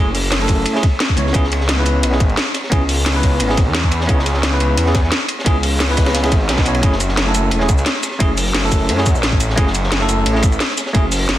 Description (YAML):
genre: liquid drum and bass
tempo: 175 BPM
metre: 4/4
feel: straight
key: F# minor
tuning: A4 = 440 Hz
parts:
  - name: bell-like tine electric piano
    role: accompaniment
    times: 0.0-11.4 s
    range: A3 to C#5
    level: -20 LUFS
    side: equal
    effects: ping-pong delay
  - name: swelling detuned saw bass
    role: bass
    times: 0.0-11.4 s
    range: E1 to F#2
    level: -18 LUFS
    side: equal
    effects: none
  - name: crunchy breakbeat drum kit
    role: drums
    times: 0.1-11.4 s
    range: hi-hat, ride cymbal, snare drum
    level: -24 LUFS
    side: equal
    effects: high-pass filter on cymbals, high-pass filter on hats, high-pass filter on snare, high-pass filter on room
  - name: drum and bass drum kit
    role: drums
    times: 0.1-11.4 s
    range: hi-hat, shaker, snare drum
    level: -21 LUFS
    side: equal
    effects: none
  - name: electronic kick drum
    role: drums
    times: 0.5-11.0 s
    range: none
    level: -16 LUFS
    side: equal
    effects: none
room: light reverb, small room ambience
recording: dense, heavily limited modern master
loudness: -14 LUFS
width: side -13 dB against mid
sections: 0.0-11.4 A section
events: drum fill 6.5-6.8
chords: 0.0 F#m9; 1.2 C#m7; 6.8 F#m9